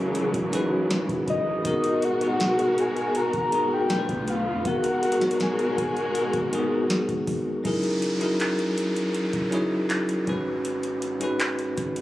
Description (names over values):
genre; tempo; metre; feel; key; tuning
contemporary R&B; 80 BPM; 4/4; straight; G# minor; A4 = 441 Hz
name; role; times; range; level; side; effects
bell-like tine electric piano; accompaniment; 0.0-12.0 s; G#2 to C#5; -26 LUFS; equal; fast stereo tremolo
warm studio string section; sustained chords; 0.0-7.6 s; B2 to A#4; -26 LUFS; equal; none
clean 808-style bass; bass; 0.0-12.0 s; F#1 to F2; -39 LUFS; equal; none
booming analog drum machine; drums; 0.1-12.0 s; handclaps, hi-hat, kick drum, snare drum; -31 LUFS; equal; none
soft octave-layered synth lead; melody; 1.3-6.9 s; D#5 to A#5; -28 LUFS; left 1 dB; chorus, phaser, ping-pong delay
downlifter; sound effects; 7.6-12.0 s; none; -36 LUFS; equal; none
room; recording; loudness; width
light reverb, digital ambience; recorded on a phone in the room, club reverb, compression; -22 LUFS; side -15 dB against mid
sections
0.0-7.7 A section; 7.7-12.0 B section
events
none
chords
0.0 E69/G#; 1.7 G#m9; 3.9 Bm7b5; 4.7 G#m9; 7.7 F#13; 10.3 G#madd11